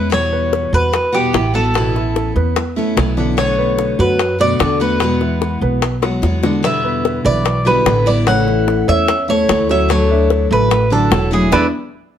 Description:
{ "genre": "latin, Cuban son and guajira", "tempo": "147 BPM", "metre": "4/4", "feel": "straight", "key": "unclear", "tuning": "A4 = 440 Hz", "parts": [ { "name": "Cuban tres", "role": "melody", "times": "0.0-11.7 s", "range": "G4 to F#5", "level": "-17 LUFS", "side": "right 1 dB", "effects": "none" }, { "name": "picked steel-string acoustic guitar", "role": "accompaniment", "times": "0.0-11.7 s", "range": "B2 to F#4", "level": "-20 LUFS", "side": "left 4 dB", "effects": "none" }, { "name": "dark grand piano", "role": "arpeggios", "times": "0.0-11.7 s", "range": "B2 to E5", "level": "-21 LUFS", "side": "right 1 dB", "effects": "none" }, { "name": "upright bass", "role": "bass", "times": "0.0-11.7 s", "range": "E1 to F#2", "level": "-19 LUFS", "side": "right 1 dB", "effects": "none" }, { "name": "bongos", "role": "percussion", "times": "0.1-11.6 s", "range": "none", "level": "-20 LUFS", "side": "left 7 dB", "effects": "none" }, { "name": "nylon-string guitar", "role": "second line", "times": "6.6-11.7 s", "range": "E4 to C#5", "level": "-24 LUFS", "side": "right 5 dB", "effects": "none" } ], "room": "light reverb", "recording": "none", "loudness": "-13 LUFS", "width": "side -9 dB against mid", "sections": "0.1-12.2 A section", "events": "drum fill 6.0-6.6; band accent 11.5-12.2", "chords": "0.1 Emadd9; 1.7 Aadd9; 3.4 Bm7; 5.0 Eadd9; 6.6 Em7; 8.3 A; 9.9 Dadd9; 11.5 E7" }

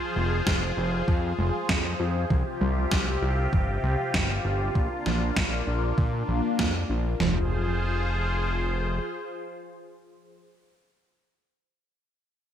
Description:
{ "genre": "synthwave", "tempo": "98 BPM", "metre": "4/4", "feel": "straight", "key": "F dorian", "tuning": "A4 = 439 Hz", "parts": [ { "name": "phased analog pad", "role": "sustained chords", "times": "0.0-10.4 s", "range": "C3 to C5", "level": "-29 LUFS", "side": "left 1 dB", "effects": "phaser, chorus, sidechain pumping" }, { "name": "warbly dusty pluck", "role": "arpeggios", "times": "0.0-7.5 s", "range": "D3 to F4", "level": "-33 LUFS", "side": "right 2 dB", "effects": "lush chorus, digital delay" }, { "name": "fat analog bass", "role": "bass", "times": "0.2-9.0 s", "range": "F1 to Bb2", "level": "-28 LUFS", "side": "equal", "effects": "sidechain pumping" }, { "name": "electronic snare drum", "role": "drums", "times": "0.5-6.7 s", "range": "none", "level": "-29 LUFS", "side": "equal", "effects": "gated reverb, gated reverb snare, overdrive" }, { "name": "gated 80s digital drum machine", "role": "drums", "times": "0.5-7.3 s", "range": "kick drum, snare drum, toms", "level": "-27 LUFS", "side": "equal", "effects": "gated reverb, gated reverb snare, overdrive" } ], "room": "moderate lush hall reverb, RT60 1.6 s", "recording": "bright 1980s-style digital production", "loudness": "-24 LUFS", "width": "side -9 dB against mid", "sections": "0.0-7.2 A section; 7.2-9.7 B section", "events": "none", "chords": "0.0 Fm; 2.3 Csus4; 4.8 Bb; 7.2 Fm" }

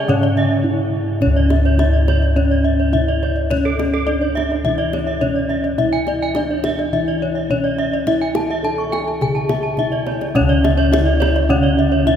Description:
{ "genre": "Balinese gamelan", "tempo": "105 BPM", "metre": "4/4", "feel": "straight", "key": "C# pelog", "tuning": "A4 = 445 Hz", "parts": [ { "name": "gamelan-type bronze metallophone", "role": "melody", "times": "0.0-12.2 s", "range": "C#4 to A4-40c", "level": "-21 LUFS", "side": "right 1 dB", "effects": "none" }, { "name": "gamelan-type bronze metallophone", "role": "accompaniment", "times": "0.0-1.2, 10.3-12.2 s", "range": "C#3", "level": "-25 LUFS", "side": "equal", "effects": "none" }, { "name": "gamelan-type bronze metallophone", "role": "arpeggios", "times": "0.0-12.1 s", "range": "A4-40c to C#6", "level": "-25 LUFS", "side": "right 5 dB", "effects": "none" }, { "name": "gamelan-type bossed gongs", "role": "bass", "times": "0.0-12.2 s", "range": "C#2 to C#5", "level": "-19 LUFS", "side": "equal", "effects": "none" }, { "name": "gamelan-type bronze metallophone", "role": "arpeggios", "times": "0.1-12.2 s", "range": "C#5 to A5-40c", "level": "-22 LUFS", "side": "left 4 dB", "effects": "none" }, { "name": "kendang", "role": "percussion", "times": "0.1-12.2 s", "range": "none", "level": "-26 LUFS", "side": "left 3 dB", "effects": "none" } ], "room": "wet cathedral reverb, RT60 6.9 s", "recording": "recorded in a church or concert hall", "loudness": "-15 LUFS", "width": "side -9 dB against mid", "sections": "0.0-1.2 A section; 1.2-12.2 B section", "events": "break 0.4-1.2; drum fill 9.9-10.4", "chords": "none" }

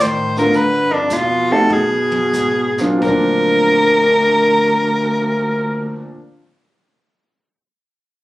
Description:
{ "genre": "jazz, small-group swing and bop", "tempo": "84-113 BPM", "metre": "4/4", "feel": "swing 68% on 8ths", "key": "Bb major", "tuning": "A4 = 440 Hz", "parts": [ { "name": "breathy soprano saxophone", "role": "melody", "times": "0.0-6.1 s", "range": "D4 to C5", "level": "-15 LUFS", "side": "equal", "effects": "none" }, { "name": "breathy baritone saxophone", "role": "second line", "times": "0.0-6.1 s", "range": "D2 to Eb3", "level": "-21 LUFS", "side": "right 1 dB", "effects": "none" }, { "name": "upright bass", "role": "bass", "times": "0.0-6.1 s", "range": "Bb1 to A2", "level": "-30 LUFS", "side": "left 1 dB", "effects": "none" }, { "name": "jazz brush drum kit", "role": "drums", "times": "0.0-3.2 s", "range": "brushed snare drum, hi-hat, kick drum, snare drum, toms", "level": "-30 LUFS", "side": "equal", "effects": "none" }, { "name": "clear baby grand piano", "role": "accompaniment", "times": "0.4-6.2 s", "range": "Bb2 to Gb4", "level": "-19 LUFS", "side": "equal", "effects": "none" } ], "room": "moderate club reverb, RT60 0.5 s", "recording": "recorded on a phone in the room, club reverb, compression", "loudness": "-13 LUFS", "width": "side -17 dB against mid", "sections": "0.0-3.0 A section; 3.0-8.2 B section", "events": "slowing down 0.0-3.0; drum fill 1.7-3.0", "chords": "0.0 F; 0.5 F13; 1.7 B5; 3.0 Bbadd9" }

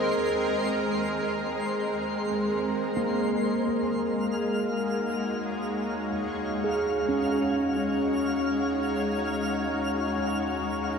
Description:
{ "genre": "ambient", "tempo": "free time", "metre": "none", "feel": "none", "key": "Eb dorian", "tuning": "A4 = 440 Hz", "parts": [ { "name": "shimmering ambient pad", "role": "sustained chords", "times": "0.0-11.0 s", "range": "Eb2 to Db5", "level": "-27 LUFS", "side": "equal", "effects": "chorus, built-in reverb, shimmer reverb" }, { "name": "tine electric piano", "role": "arpeggios", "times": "0.0-11.0 s", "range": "Bb3 to Eb5", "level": "-30 LUFS", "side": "equal", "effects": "analog chorus, analog delay" }, { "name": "twinkling granular texture", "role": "texture", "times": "0.0-11.0 s", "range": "C5 to F6", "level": "-35 LUFS", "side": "equal", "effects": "built-in reverb, shimmer reverb" }, { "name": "warm sub bass", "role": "bass", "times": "3.7-11.0 s", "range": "Eb2", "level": "-45 LUFS", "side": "equal", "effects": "none" } ], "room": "wet plate reverb, RT60 2.8 s", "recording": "dreamy mix soaked in reverb", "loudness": "-25 LUFS", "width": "side -6 dB against mid", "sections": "0.0-3.7 A section; 3.7-11.0 B section", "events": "fade-in on sub bass 3.7-11.0", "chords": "0.0 Fm/Eb (rootless); 3.7 Ebm11" }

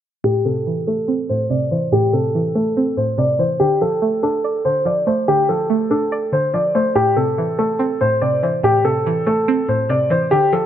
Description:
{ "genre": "hip hop", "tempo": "143 BPM", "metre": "4/4", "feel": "half-time", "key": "A minor", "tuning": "A4 = 441 Hz", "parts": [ { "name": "warm baby grand piano", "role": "melody", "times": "0.2-10.7 s", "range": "G4 to D5", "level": "-17 LUFS", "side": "equal", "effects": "low-pass filter" }, { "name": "string-like resonator pluck", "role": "accompaniment", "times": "0.2-10.7 s", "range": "A2 to D5", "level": "-20 LUFS", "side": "right 1 dB", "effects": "chorus, phaser, low-pass filter" } ], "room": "moderate lush hall reverb, RT60 2.4 s", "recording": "none", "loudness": "-16 LUFS", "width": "side -10 dB against mid", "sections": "0.2-10.7 A section", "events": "filter sweep 0.2-10.7", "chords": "0.2 Am; 3.6 Dm; 7.0 Am" }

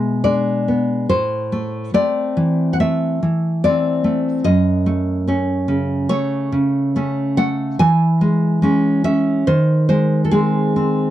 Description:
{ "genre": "romantic piece for solo classical guitar", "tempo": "71 BPM", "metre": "4/4", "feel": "rubato", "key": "unclear", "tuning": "A4 = 440 Hz", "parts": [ { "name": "nylon-string guitar", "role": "solo", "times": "0.0-11.1 s", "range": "F#2 to G#5", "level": "-15 LUFS", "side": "equal", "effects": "none" } ], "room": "moderate small room reverb, RT60 0.6 s", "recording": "dry, close 1970s-style studio recording", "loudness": "-15 LUFS", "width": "side -12 dB against mid", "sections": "0.0-11.1 A section", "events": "none", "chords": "0.0 E7/B; 1.1 Am; 4.5 F#m; 7.8 C#m/E; 9.5 G#/D#" }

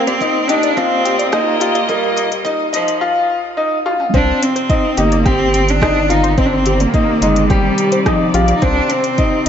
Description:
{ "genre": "piano and strings electronica", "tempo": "107 BPM", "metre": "4/4", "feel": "straight", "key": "C minor", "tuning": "A4 = 440 Hz", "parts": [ { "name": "rich cello", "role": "melody", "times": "0.0-9.5 s", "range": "F3 to Eb4", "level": "-18 LUFS", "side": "equal", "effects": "shimmer reverb" }, { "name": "muted string quartet", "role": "sustained chords", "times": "0.0-9.5 s", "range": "Bb2 to F5", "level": "-24 LUFS", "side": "right 2 dB", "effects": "shimmer reverb" }, { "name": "analog pluck", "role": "arpeggios", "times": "0.1-9.2 s", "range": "G4 to C6", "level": "-24 LUFS", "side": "left 1 dB", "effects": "chorus, phaser, sidechain pumping, ping-pong delay, shimmer reverb" }, { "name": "organic electronic drum kit", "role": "drums", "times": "0.1-9.5 s", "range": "hi-hat, rim click, toms", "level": "-24 LUFS", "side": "equal", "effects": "none" }, { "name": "bright baby grand piano", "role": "riff", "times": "0.2-9.5 s", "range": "Bb3 to G4", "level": "-17 LUFS", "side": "left 1 dB", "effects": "ping-pong delay, shimmer reverb" }, { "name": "electronic kick drum", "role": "drums", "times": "0.2-9.3 s", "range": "none", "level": "-17 LUFS", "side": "equal", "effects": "none" }, { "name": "round analog bass", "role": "bass", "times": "0.5-9.5 s", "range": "F1 to C2", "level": "-18 LUFS", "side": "equal", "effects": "sidechain pumping" } ], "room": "wet echo chamber reverb, RT60 2.2 s", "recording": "high-pass filter, nothing above 7.8 kHz, faint mains hum", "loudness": "-12 LUFS", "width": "side -8 dB against mid", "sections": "0.0-4.1 A section; 4.1-9.5 B section", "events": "build-up 0.0-4.1; filter sweep 0.0-4.1; drum fill 3.9; drop 4.1-9.5", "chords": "0.0 Bbsus4; 4.1 Cmadd9" }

